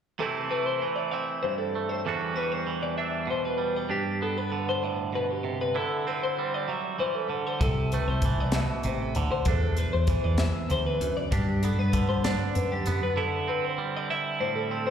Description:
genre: math rock and midwest emo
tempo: 65 BPM (dotted quarters)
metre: 6/8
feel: straight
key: G major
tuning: A4 = 440 Hz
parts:
  - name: twangy electric guitar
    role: accompaniment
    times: 0.2-14.9 s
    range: E2 to F#4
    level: -30 LUFS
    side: right 6 dB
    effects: spring reverb, slapback echo
  - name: twelve-string electric guitar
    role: arpeggios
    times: 0.2-14.9 s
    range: G4 to E5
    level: -30 LUFS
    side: left 3 dB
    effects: slapback echo
  - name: fingered electric bass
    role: bass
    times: 7.6-13.0 s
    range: A1 to G2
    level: -27 LUFS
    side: left 1 dB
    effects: none
  - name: crisp fusion drum kit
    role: drums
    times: 7.6-13.0 s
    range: hi-hat, kick drum, snare drum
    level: -29 LUFS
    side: left 1 dB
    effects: none
room: light reverb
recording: live gig heard through the venue's PA, recital hall reverb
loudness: -25 LUFS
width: side -8 dB against mid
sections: 0.2-14.9 A section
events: break 13.2-14.9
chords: 0.2 C6; 2.1 Em9; 3.9 G; 5.8 D9sus4; 7.6 C6; 9.5 Esus2; 11.3 Gmaj7; 13.2 D9sus4

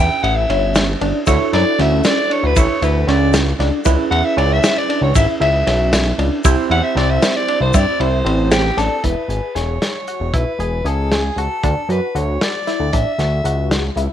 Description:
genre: progressive instrumental, band music in an uneven meter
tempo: 232 BPM (eighths)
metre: 5/8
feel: straight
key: unclear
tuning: A4 = 440 Hz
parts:
  - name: raspy soprano saxophone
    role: melody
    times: 0.0-13.7 s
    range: G4 to G5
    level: -20 LUFS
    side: left 1 dB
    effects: none
  - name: overdriven tine electric piano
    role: accompaniment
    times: 0.0-9.0 s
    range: C4 to C5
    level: -24 LUFS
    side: right 13 dB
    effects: none
  - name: tight sequenced synth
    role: arpeggios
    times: 0.0-14.1 s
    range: C4 to G#4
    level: -22 LUFS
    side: equal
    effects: chorus, phaser, tape echo
  - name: fat analog bass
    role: bass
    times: 0.0-14.1 s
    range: E1 to G2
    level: -18 LUFS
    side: equal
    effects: none
  - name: crunchy breakbeat drum kit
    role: drums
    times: 0.2-14.1 s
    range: hi-hat, kick drum, ride cymbal, snare drum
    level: -20 LUFS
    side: equal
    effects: none
  - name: tube shaker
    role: percussion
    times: 0.8-8.9 s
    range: none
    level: -30 LUFS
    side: left 19 dB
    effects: none
room: small room reverb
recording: 1960s-style stereo with parts hard left and right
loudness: -14 LUFS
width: side -10 dB against mid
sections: 0.0-9.0 A section; 9.0-14.1 B section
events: soprano saxophone solo 0.0-9.0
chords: 0.0 A7; 1.3 Dadd9; 3.9 C#m7; 6.4 C; 9.0 E; 11.6 Dadd9

